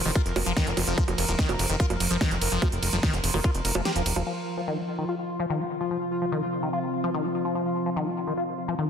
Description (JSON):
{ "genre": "psychedelic trance", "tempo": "146 BPM", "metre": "4/4", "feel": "straight", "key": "unclear", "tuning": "A4 = 440 Hz", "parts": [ { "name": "pulsing gated texture", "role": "sustained chords", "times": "0.0-8.9 s", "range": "F3 to Bb4", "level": "-31 LUFS", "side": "equal", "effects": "chorus, built-in reverb, sidechain pumping" }, { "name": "deep dark ambient pad", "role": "texture", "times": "0.0-8.9 s", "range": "C4 to C6", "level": "-35 LUFS", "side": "left 1 dB", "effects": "chorus, built-in reverb, sidechain pumping" }, { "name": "liquid acid bass", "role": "riff", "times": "0.1-8.9 s", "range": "Eb3 to G4", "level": "-31 LUFS", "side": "left 3 dB", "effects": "phaser, auto-pan, sidechain pumping, tape echo" }, { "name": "fat analog bass", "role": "bass", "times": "0.1-4.2 s", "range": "Eb1 to F1", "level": "-28 LUFS", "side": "equal", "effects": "none" }, { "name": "big-room dance drum kit", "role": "drums", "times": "0.1-4.2 s", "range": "bongos, hi-hat, ride cymbal, snare drum", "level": "-29 LUFS", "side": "right 3 dB", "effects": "studio reverb" }, { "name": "electronic kick drum", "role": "drums", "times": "0.2-3.5 s", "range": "none", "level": "-24 LUFS", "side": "equal", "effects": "studio reverb" } ], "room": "light reverb, digital ambience", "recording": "dense, heavily limited modern master", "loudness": "-24 LUFS", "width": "side -7 dB against mid", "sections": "0.0-4.3 A section; 4.3-8.9 B section", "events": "drop 0.0-4.3; kick drops out 3.9-4.3", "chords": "0.0 F5", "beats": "0.15 0.57 | 0.98 1.39 1.80 2.21 | 2.62 3.03 3.44 3.85 | 4.26 4.67 5.09 5.50 | 5.91 6.32 6.73 7.14 | 7.55 7.96 8.37 8.79" }